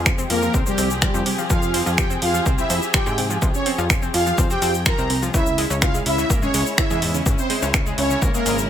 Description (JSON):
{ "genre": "melodic techno", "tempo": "125 BPM", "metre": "4/4", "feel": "straight", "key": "F harmonic minor", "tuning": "A4 = 440 Hz", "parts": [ { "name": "dark studio string section", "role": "sustained chords", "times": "0.0-8.7 s", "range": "Db3 to Ab4", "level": "-30 LUFS", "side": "left 2 dB", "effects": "sidechain pumping" }, { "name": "plucky analog bass", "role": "bass", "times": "0.0-8.7 s", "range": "Ab1 to Ab2", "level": "-25 LUFS", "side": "equal", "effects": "sidechain pumping" }, { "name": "analog pluck", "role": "arpeggios", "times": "0.1-8.6 s", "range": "Ab2 to F4", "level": "-28 LUFS", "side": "equal", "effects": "chorus, cassette tape, sidechain pumping, digital delay" }, { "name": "electronic kick drum", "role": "drums", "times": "0.1-8.3 s", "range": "none", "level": "-22 LUFS", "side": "equal", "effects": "none" }, { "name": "techno drum kit", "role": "drums", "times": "0.1-8.7 s", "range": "finger snaps, hi-hat, shaker", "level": "-23 LUFS", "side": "equal", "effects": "none" }, { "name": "expressive synth lead", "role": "melody", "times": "0.3-8.6 s", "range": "G3 to Bb4", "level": "-25 LUFS", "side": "equal", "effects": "analog chorus, dub echo" }, { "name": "soft supersaw", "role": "second line", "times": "0.3-8.6 s", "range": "G4 to Bb5", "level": "-27 LUFS", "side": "equal", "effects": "sidechain pumping, digital delay" } ], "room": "digital ambience", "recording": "none", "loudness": "-17 LUFS", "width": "side -10 dB against mid", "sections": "0.0-8.7 A section", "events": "none", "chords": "0.0 Fm; 5.3 Dbm", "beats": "0.06 0.54 1.02 | 1.50 1.98 2.46 2.94 | 3.42 3.90 4.38 4.86 | 5.34 5.82 6.30 6.78 | 7.26 7.74 8.22" }